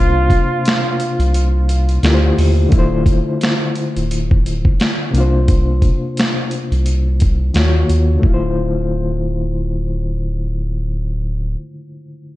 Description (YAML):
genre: lo-fi hip hop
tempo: 87 BPM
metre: 4/4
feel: swing 58% on 16ths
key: D minor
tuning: A4 = 440 Hz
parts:
  - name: mellow flugelhorn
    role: melody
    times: 0.0-2.0 s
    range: F4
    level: -21 LUFS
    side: right 2 dB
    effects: low-pass filter, diffuse ambient delay
  - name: overdriven reed electric piano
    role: accompaniment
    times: 0.0-12.4 s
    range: C3 to Db5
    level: -20 LUFS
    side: left 2 dB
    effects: fast tremolo, low-pass filter
  - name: soft dub sub bass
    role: bass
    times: 0.0-11.6 s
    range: D1 to Eb2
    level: -16 LUFS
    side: equal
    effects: none
  - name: boom bap sampler-style drum kit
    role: drums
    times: 0.3-8.4 s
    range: finger snaps, hi-hat, kick drum, snare drum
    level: -16 LUFS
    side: equal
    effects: none
room: light reverb, digital ambience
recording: cassette tape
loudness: -14 LUFS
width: side -16 dB against mid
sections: 0.0-2.7 A section; 2.7-8.2 B section; 8.2-11.0 C section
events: kick muted 1.3-2.7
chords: 0.0 C7sus4; 2.0 Dm11; 2.7 Dm9; 5.1 C7sus4; 7.5 Ebm9; 8.2 Dm9